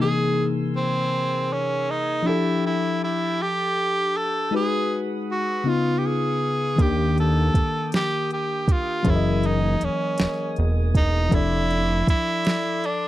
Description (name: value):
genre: slow six-eight R&B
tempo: 53 BPM (dotted quarters)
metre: 6/8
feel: straight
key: unclear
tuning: A4 = 440 Hz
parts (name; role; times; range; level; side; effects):
- breathy tenor saxophone; melody; 0.0-13.1 s; C4 to A4; -24 LUFS; right 1 dB; slapback echo
- mellow FM electric piano; accompaniment; 0.0-13.1 s; C3 to D#5; -25 LUFS; left 3 dB; chorus
- tonewheel organ; sustained chords; 0.0-13.1 s; Bb3 to E6; -36 LUFS; right 2 dB; slow rotary speaker
- fat analog bass; bass; 6.8-12.2 s; E1 to Eb2; -22 LUFS; right 1 dB; none
- smooth R&B drum kit; drums; 6.8-13.0 s; hi-hat, kick drum, snare drum; -21 LUFS; right 1 dB; none
room: little or no reverb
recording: dry, close 1970s-style studio recording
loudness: -20 LUFS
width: side -14 dB against mid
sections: 0.0-13.1 A section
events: none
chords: 0.0 C7alt; 2.3 F69; 4.5 Abm7; 5.7 Db9; 6.8 Ebmaj7; 9.0 F#13; 11.3 F6